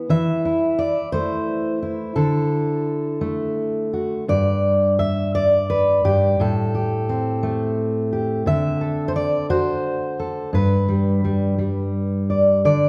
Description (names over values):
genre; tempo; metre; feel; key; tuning
folk, solo fingerstyle acoustic guitar; 58 BPM (dotted quarters); 6/8; rubato; G major; A4 = 440 Hz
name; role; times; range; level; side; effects
fingerpicked steel-string acoustic guitar; solo; 0.0-12.9 s; G2 to E5; -21 LUFS; equal; none
room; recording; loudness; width
wet large studio reverb, RT60 1.4 s; band playing live in one room; -21 LUFS; mono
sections
0.0-12.6 A section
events
none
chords
0.1 Am/E; 2.2 Dadd9; 4.3 N.C.; 6.4 Am7; 8.5 D7; 10.5 G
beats
| 0.10 1.13 | 2.16 3.21 | 4.28 5.34 | 6.40 7.44 | 8.46 9.49 | 10.53 11.58 | 12.64